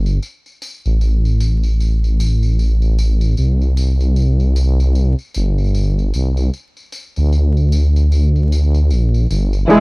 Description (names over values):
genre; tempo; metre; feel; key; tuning
trip hop; 76 BPM; 4/4; swing 60% on 16ths; unclear; A4 = 439 Hz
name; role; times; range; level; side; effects
dark detuned saw bass; bass; 0.0-9.8 s; E1 to D2; -13 LUFS; equal; none
tambourine; percussion; 0.1-9.8 s; none; -34 LUFS; left 2 dB; none
rich cello; melody; 9.7-9.8 s; G#3; -10 LUFS; equal; none
bright reed electric piano; accompaniment; 9.7-9.8 s; E3 to G#4; -10 LUFS; equal; overdrive, fast tremolo
rich chamber string section; sustained chords; 9.7-9.8 s; E3 to E4; -14 LUFS; equal; vintage 12-bit sampler grit
room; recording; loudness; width
small room ambience; worn, warbling old tape, cassette tape, vinyl crackle, warbly pitch drift; -13 LUFS; side -31 dB against mid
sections
0.0-9.8 A section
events
none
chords
0.0 N.C.; 3.4 C5